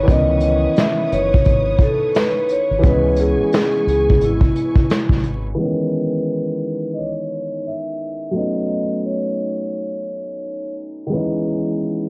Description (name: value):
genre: lo-fi hip hop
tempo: 87 BPM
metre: 4/4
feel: swing 60% on 16ths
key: C# minor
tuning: A4 = 439 Hz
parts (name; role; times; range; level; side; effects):
- vibraphone with medium hard mallets; melody; 0.0-10.7 s; E4 to E5; -23 LUFS; equal; low-pass filter, cassette tape
- dark upright piano; accompaniment; 0.0-12.1 s; D#3 to D#5; -25 LUFS; equal; low-pass filter, cassette tape
- rich studio string section; sustained chords; 0.0-5.6 s; B4 to D#6; -35 LUFS; equal; low-pass filter, cassette tape
- deep dub fingered electric bass; bass; 0.0-5.5 s; F#1 to C#2; -24 LUFS; equal; transformer saturation
- vintage brush drum kit; drums; 0.1-5.4 s; hi-hat, kick drum, snare drum; -19 LUFS; equal; none
room: light reverb, studio ambience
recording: home recording on cassette, vinyl crackle, low-pass filter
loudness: -19 LUFS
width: mono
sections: 0.0-5.6 A section; 5.6-12.1 B section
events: filter sweep 5.6-12.1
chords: 0.1 C#m9; 2.8 C#m7; 5.6 C#m9; 8.4 B9; 11.1 C#m9